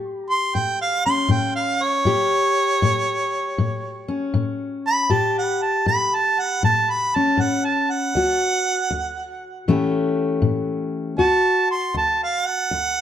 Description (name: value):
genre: blues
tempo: 79 BPM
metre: 4/4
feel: swing 68% on 8ths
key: unclear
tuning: A4 = 440 Hz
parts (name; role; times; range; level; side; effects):
- fingerpicked steel-string acoustic guitar; accompaniment; 0.0-13.0 s; D2 to G4; -22 LUFS; left 3 dB; none
- warm harmonica; melody; 0.3-13.0 s; C#5 to C6; -20 LUFS; right 3 dB; plate reverb
room: moderate studio reverb, RT60 0.6 s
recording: dark, warm production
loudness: -18 LUFS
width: side -10 dB against mid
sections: 0.0-11.2 A section; 11.2-13.0 B section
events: harmonica solo 11.2-13.0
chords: 0.0 A7; 8.1 D; 9.7 A7; 11.2 D